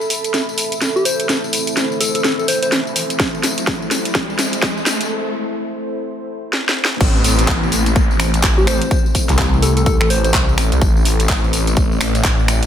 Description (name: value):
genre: bass house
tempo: 126 BPM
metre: 4/4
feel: swing 60% on 16ths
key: A minor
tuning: A4 = 440 Hz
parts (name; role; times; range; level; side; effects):
- deep dark ambient pad; sustained chords; 0.3-12.7 s; A3 to D5; -25 LUFS; left 2 dB; chorus, built-in reverb, sidechain pumping
- garage drum kit; drums; 0.0-12.7 s; crash cymbal, finger snaps, handclaps, hi-hat, snare drum, tambourine; -19 LUFS; equal; overdrive, studio reverb
- riser and downlifter; sound effects; 0.9-10.8 s; none; -27 LUFS; right 1 dB; none
- airy breathy pad; texture; 0.0-5.1 s; A4 to B5; -26 LUFS; right 3 dB; chorus, sidechain pumping
- soft struck synth lead; melody; 1.0-2.7, 8.6-10.3 s; G4 to C5; -21 LUFS; left 1 dB; chorus, ping-pong delay
- electronic kick drum; drums; 3.2-12.4 s; none; -17 LUFS; equal; overdrive, studio reverb
- phased detuned saw bass; bass; 7.0-12.6 s; A1 to C2; -17 LUFS; equal; phaser, overdrive, sidechain pumping
room: light reverb, digital ambience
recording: high-pass filter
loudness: -14 LUFS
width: side -9 dB against mid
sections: 0.0-7.0 A section; 7.0-12.7 B section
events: build-up 0.0-7.0; drum fill 0.0-5.1, 6.5-7.0; riser 0.9-5.1; break 5.1-7.0; drop 7.0-12.7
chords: 0.0 Am